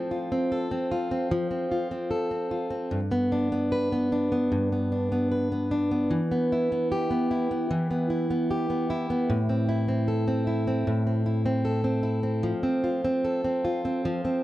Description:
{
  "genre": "pop",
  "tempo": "75 BPM",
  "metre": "4/4",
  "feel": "straight",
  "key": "unclear",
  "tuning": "A4 = 440 Hz",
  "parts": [
    { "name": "fingerpicked plugged-in steel-string acoustic guitar", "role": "solo", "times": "0.0-14.4 s", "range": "G2 to B4", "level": "-24 LUFS", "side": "equal", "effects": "none" }
  ],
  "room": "small room ambience",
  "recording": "dry, close 1970s-style studio recording",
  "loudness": "-24 LUFS",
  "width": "side -15 dB against mid",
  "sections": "0.0-14.4 A section",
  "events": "none",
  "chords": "0.0 F; 2.9 G; 6.1 Em; 9.3 Am; 12.4 F"
}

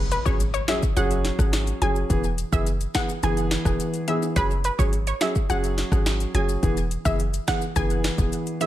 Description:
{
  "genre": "dancehall",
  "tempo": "106 BPM",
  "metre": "4/4",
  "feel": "straight",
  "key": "unclear",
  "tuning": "A4 = 436 Hz",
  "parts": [
    { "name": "clean 808-style bass", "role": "bass", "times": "0.0-8.3 s", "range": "E1 to G#1", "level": "-25 LUFS", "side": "equal", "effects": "none" },
    { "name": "impact", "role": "sound effects", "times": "0.0-2.1 s", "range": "none", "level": "-35 LUFS", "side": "equal", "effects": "none" },
    { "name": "analog pluck", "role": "melody", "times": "0.1-8.7 s", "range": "B4 to G#5", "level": "-29 LUFS", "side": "equal", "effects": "chorus, ping-pong delay" },
    { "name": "afro-pop drum kit", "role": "drums", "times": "0.1-8.7 s", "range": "finger snaps, hi-hat, kick drum, rim click, snare drum", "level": "-26 LUFS", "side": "equal", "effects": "overdrive" },
    { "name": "maracas and timbales", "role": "percussion", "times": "0.1-8.7 s", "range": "none", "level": "-39 LUFS", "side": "left 11 dB", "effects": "none" },
    { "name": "warm baby grand piano", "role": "accompaniment", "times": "0.3-8.7 s", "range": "E3 to G#4", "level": "-27 LUFS", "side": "equal", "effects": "sidechain pumping" }
  ],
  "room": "light reverb, digital ambience",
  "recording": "none",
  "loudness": "-21 LUFS",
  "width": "side -13 dB against mid",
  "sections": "0.0-8.7 A section",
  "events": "impact 0.0-2.1",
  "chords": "0.0 F#sus2; 2.1 E; 4.4 F#sus2; 6.6 E"
}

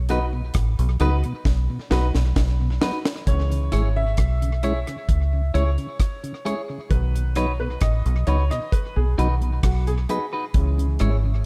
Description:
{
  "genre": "roots reggae",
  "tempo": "66 BPM",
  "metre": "4/4",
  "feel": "straight",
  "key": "C# minor",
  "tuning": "A4 = 440 Hz",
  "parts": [
    { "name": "deep dub fingered electric bass", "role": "bass", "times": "0.0-11.4 s", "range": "G#1 to C#2", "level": "-23 LUFS", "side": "equal", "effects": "none" },
    { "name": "clean electric guitar", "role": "accompaniment", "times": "0.1-11.2 s", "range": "D#4 to C#5", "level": "-34 LUFS", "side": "equal", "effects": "spring reverb, tape echo" },
    { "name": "mellow tonewheel organ", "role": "accompaniment", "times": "0.1-11.3 s", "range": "B2 to E4", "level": "-33 LUFS", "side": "equal", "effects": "slow rotary speaker" },
    { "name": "warm upright piano", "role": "stabs", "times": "0.1-11.5 s", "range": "D#3 to E5", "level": "-33 LUFS", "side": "equal", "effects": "none" },
    { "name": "deep reggae drum kit", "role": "drums", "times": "0.1-11.2 s", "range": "hi-hat, kick drum, rim click, snare drum", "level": "-26 LUFS", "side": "equal", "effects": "none" }
  ],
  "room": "little or no reverb",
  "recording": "none",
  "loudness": "-22 LUFS",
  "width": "mono",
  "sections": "0.0-3.3 A section; 3.3-11.5 B section",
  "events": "drum fill 1.5-3.3; upright piano solo 3.3-11.5",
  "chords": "0.0 B; 3.3 C#m; 6.9 B; 10.5 C#m"
}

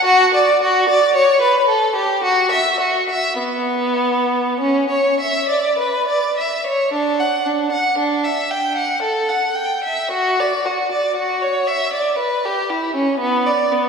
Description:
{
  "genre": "classical, baroque-style suite movement for unaccompanied violin",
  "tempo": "49-60 BPM",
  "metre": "3/4",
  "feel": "rubato",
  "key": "B minor, D major from 6.9 s",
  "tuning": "A4 = 440 Hz",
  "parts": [
    { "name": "rich violin", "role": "solo", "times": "0.0-13.9 s", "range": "B3 to G5", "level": "-15 LUFS", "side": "equal", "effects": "none" }
  ],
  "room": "wet concert hall reverb, RT60 2.4 s",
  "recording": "heard from further back in the room",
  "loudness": "-15 LUFS",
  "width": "side -5 dB against mid",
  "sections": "0.0-6.9 A section; 6.9-13.9 A section",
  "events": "none",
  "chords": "none"
}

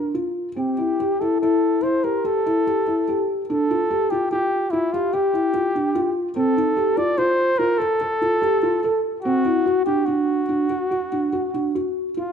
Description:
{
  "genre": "contemporary instrumental, chamber music in an uneven meter",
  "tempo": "145 BPM",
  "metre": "7/4",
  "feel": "straight",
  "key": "unclear",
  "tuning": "A4 = 441 Hz",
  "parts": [
    { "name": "breathy flugelhorn", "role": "melody", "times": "0.0-12.3 s", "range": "E4 to D5", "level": "-22 LUFS", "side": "right 1 dB", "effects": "none" },
    { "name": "felt-muted upright piano", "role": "arpeggios", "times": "0.0-12.3 s", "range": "C4 to A4", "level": "-21 LUFS", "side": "left 1 dB", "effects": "none" }
  ],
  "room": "moderate scoring stage reverb, RT60 1.6 s",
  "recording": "none",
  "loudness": "-19 LUFS",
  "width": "side -7 dB against mid",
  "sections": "0.0-12.2 A section",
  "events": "none",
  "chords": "0.0 Bb; 0.6 A7(no3); 3.5 G5; 6.4 F; 9.2 D"
}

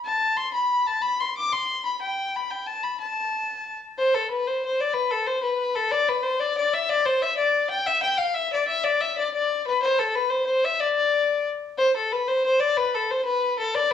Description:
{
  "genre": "celtic folk",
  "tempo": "123 BPM (dotted quarters)",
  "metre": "6/8",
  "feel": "straight",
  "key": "unclear",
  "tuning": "A4 = 440 Hz",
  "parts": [
    { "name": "rich fiddle", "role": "solo", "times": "0.0-13.9 s", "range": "A4 to D6", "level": "-22 LUFS", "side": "left 3 dB", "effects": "cassette tape" }
  ],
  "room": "wet studio reverb, RT60 0.6 s",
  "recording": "home recording on cassette, studio reverb",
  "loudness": "-22 LUFS",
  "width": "side -9 dB against mid",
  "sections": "0.0-4.0 A section; 4.0-11.8 B section; 11.8-13.9 B section",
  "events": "none",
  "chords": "none"
}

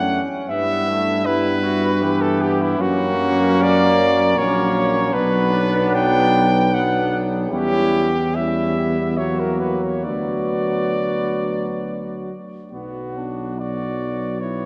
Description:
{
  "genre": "classical, hymn-like piece for brass band",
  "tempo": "65-79 BPM",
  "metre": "3/4",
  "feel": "rubato",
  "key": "B minor",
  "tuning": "A4 = 443 Hz",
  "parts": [
    { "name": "dark cornet", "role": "melody", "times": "0.0-14.7 s", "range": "E4 to G5", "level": "-24 LUFS", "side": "equal", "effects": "none" },
    { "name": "mellow flugelhorn", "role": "second line", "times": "0.0-14.7 s", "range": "B3 to G4", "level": "-29 LUFS", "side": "equal", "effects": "none" },
    { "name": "mellow trombone section", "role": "accompaniment", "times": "0.0-14.7 s", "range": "A3 to C#4", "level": "-29 LUFS", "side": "equal", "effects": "none" },
    { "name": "warm euphonium", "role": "accompaniment", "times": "0.0-14.7 s", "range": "E3 to A3", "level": "-28 LUFS", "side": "equal", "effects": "none" },
    { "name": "mellow tuba", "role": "bass", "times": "0.0-14.7 s", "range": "A#1 to G2", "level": "-26 LUFS", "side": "equal", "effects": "none" }
  ],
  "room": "wet cathedral reverb, RT60 4.5 s",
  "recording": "none",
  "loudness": "-19 LUFS",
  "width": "mono",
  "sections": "0.0-12.7 A section; 12.7-14.7 B section",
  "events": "none",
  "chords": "0.5 Em/G; 2.8 F#; 5.1 Bm; 7.5 C#dim/E; 9.2 F#7/E; 10.1 Bm/D; 12.7 Bm"
}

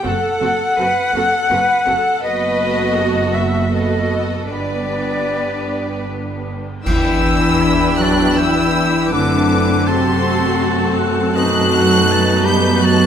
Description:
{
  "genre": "cinematic, emotional film score for orchestra",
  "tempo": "74-84 BPM",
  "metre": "3/4",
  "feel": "rubato",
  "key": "E minor",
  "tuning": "A4 = 440 Hz",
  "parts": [
    { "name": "concert flute", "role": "second line", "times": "0.0-6.0 s", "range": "D5 to F#5", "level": "-19 LUFS", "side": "left 2 dB", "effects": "none" },
    { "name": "warm studio violin section", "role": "second line", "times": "0.0-13.1 s", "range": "A4 to A5", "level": "-24 LUFS", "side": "left 2 dB", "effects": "none" },
    { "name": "rich studio viola section", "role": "accompaniment", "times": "0.0-13.1 s", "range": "B3 to F#4", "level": "-22 LUFS", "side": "right 2 dB", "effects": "none" },
    { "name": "clear studio double bass section", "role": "bass", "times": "0.0-13.1 s", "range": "F#1 to F#2", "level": "-22 LUFS", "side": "right 3 dB", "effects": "none" },
    { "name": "rich studio cello section", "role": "bass", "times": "0.0-13.1 s", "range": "C3 to B4", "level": "-22 LUFS", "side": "right 1 dB", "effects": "none" },
    { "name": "rich studio violin section", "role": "melody", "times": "0.1-13.1 s", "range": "G4 to G6", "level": "-23 LUFS", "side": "left 2 dB", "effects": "none" },
    { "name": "cymbal swell, clash cymbals and concert bass drum", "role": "percussion", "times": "4.5-8.3 s", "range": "none", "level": "-24 LUFS", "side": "equal", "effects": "none" },
    { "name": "warm clarinet", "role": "second line", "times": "6.9-13.1 s", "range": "C4 to G4", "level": "-22 LUFS", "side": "left 1 dB", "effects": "none" },
    { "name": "warm oboe", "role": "second line", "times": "6.9-13.1 s", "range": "D#5 to B5", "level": "-23 LUFS", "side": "equal", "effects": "none" },
    { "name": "mellow French horn section", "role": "sustained chords", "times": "6.9-13.1 s", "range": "B2 to D4", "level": "-21 LUFS", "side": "left 6 dB", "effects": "none" }
  ],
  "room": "moderate scoring stage reverb, RT60 1.8 s",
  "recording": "none",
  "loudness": "-14 LUFS",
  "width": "side -8 dB against mid",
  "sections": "0.0-6.9 A section; 6.9-13.1 A section",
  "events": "band accent 6.9-7.6",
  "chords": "0.1 F#dim; 2.2 B7/F#; 4.5 G; 6.9 Em7; 9.1 F#dim; 11.4 B7/F#"
}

